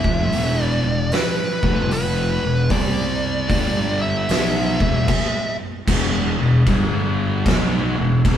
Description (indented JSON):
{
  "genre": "stoner and doom metal",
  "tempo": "76 BPM",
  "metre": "4/4",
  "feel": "swing 65% on 8ths",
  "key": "E minor",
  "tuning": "A4 = 439 Hz",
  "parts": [
    { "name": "fuzz lead guitar", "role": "melody", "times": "0.0-5.6 s", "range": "B4 to E5", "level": "-24 LUFS", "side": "right 1 dB", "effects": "distortion" },
    { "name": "thick fuzz guitar", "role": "riff", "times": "0.0-8.4 s", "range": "E2 to C4", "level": "-21 LUFS", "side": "equal", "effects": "distortion" },
    { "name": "fuzz fingered electric bass", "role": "bass", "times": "0.0-8.4 s", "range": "E1 to C2", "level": "-24 LUFS", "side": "equal", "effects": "overdrive" },
    { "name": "oversized low-tuned drum kit", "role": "drums", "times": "0.0-8.4 s", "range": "crash cymbal, hi-hat, kick drum, snare drum", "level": "-22 LUFS", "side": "equal", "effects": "none" }
  ],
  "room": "moderate studio reverb, RT60 0.8 s",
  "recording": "band playing live in one room",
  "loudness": "-17 LUFS",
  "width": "side -10 dB against mid",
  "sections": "0.0-5.9 A section; 5.9-8.4 B section",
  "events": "stop 5.1-5.9",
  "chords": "0.0 E5; 1.5 F5; 2.3 E5; 2.7 C5; 3.5 G5; 4.3 E5; 6.7 G5; 7.5 E5",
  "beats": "0.32 1.12 1.91 | 2.71 3.50 4.29 5.08 | 5.87 6.67 7.46 8.25"
}